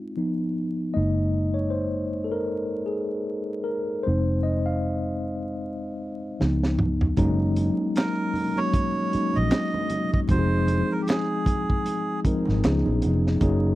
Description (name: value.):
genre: R&B, neo-soul.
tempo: 77 BPM.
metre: 4/4.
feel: swing 58% on 16ths.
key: unclear.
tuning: A4 = 441 Hz.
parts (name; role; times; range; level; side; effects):
mellow tine electric piano; accompaniment; 0.0-13.8 s; F3 to F5; -25 LUFS; left 1 dB; fast stereo tremolo.
vintage muted fingered electric bass; bass; 1.0-13.8 s; F1 to Db2; -25 LUFS; equal; none.
crunchy breakbeat drum kit; drums; 6.4-13.6 s; handclaps, hi-hat, kick drum, snare drum, toms; -25 LUFS; equal; none.
congas; percussion; 7.2-13.6 s; none; -38 LUFS; right 5 dB; none.
melodica; melody; 8.0-12.2 s; G4 to Eb5; -29 LUFS; right 3 dB; none.
room: little or no reverb.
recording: dry, close 1970s-style studio recording, vinyl crackle.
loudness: -22 LUFS.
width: side -16 dB against mid.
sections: 0.0-7.2 A section; 7.2-13.8 B section.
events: tine electric piano solo 0.0-7.2; drum fill 6.4-7.2.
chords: 0.2 B; 0.9 Gb69; 4.1 Fm7; 6.4 Db9; 7.2 Gb69; 10.3 Fm7; 12.6 Db9.